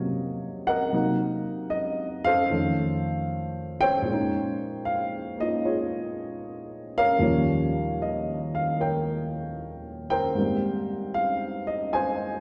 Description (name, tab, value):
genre	solo jazz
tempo	76 BPM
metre	4/4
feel	swing 68% on 8ths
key	Ab major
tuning	A4 = 440 Hz
part	dark upright piano	solo	0.0-12.4 s	Eb2 to Ab5	-27 LUFS	equal	none
room	wet scoring stage reverb, RT60 1.5 s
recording	recorded in a church or concert hall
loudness	-27 LUFS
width	mono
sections	0.0-12.4 A section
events	none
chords	0.0 Gbmaj9; 0.9 Cm7b5; 2.5 F7b13; 4.1 Bbm11; 7.2 Eb9; 10.4 Abmaj9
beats	0.14 | 0.93 1.72 2.50 3.29 | 4.07 4.86 5.64 6.43 | 7.22 8.00 8.79 9.57 | 10.36 11.15 11.94